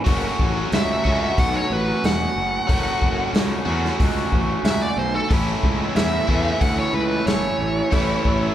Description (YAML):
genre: blues rock power trio and southern rock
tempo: 92 BPM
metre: 4/4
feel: straight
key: unclear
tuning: A4 = 440 Hz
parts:
  - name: overdriven electric guitar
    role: riff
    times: 0.0-8.5 s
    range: A2 to F#4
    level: -23 LUFS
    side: right 1 dB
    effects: none
  - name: fuzz fingered electric bass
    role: bass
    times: 0.1-8.5 s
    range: E1 to E2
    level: -25 LUFS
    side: equal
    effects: overdrive
  - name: vintage drum kit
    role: drums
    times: 0.1-8.4 s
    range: hi-hat, kick drum, snare drum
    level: -22 LUFS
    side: equal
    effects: none
  - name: dark smooth lead guitar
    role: melody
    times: 0.7-8.5 s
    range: A4 to F#5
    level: -25 LUFS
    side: equal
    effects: wah, overdrive
  - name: overdriven tonewheel organ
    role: sustained chords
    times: 5.3-8.5 s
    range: C#4 to E5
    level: -33 LUFS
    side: right 3 dB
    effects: none
room: light reverb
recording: band playing live in one room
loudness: -18 LUFS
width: side -11 dB against mid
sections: 0.0-8.5 A section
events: none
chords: 0.1 F#m; 5.3 A